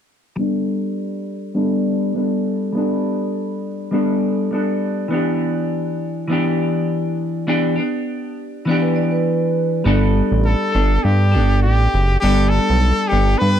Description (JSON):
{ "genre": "indie pop, bedroom pop", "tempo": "101 BPM", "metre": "4/4", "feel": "swing 55% on 16ths", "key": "G major", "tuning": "A4 = 442 Hz", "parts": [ { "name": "semi-hollow electric guitar", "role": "accompaniment", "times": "0.4-13.6 s", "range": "E3 to A4", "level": "-19 LUFS", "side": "left 1 dB", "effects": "wide subtle chorus, warbly pitch drift, low-pass filter" }, { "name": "vibraphone with medium hard mallets", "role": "second line", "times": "8.8-9.8 s", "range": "B4 to D5", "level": "-22 LUFS", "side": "right 8 dB", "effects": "analog chorus, tape echo" }, { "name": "fat analog bass", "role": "bass", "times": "9.9-13.6 s", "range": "F#1 to G2", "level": "-15 LUFS", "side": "equal", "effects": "none" }, { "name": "brilliant trumpet", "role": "melody", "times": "10.5-13.6 s", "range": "G4 to B4", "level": "-20 LUFS", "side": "left 2 dB", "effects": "lush chorus" } ], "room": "little or no reverb", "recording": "dry, close 1970s-style studio recording", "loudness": "-16 LUFS", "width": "side -9 dB against mid", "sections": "0.4-9.9 A section; 9.9-13.6 B section", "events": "filter sweep on clean electric guitar 0.4-9.9", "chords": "0.4 Gadd9; 5.1 Em7; 9.9 Gadd9", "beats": "| 0.37 0.96 1.56 2.15 | 2.74 3.33 3.92 4.52 | 5.11 5.70 6.29 6.89 | 7.48 8.07 8.67 9.26 | 9.85 10.45 11.04 11.63 | 12.22 12.81 13.41" }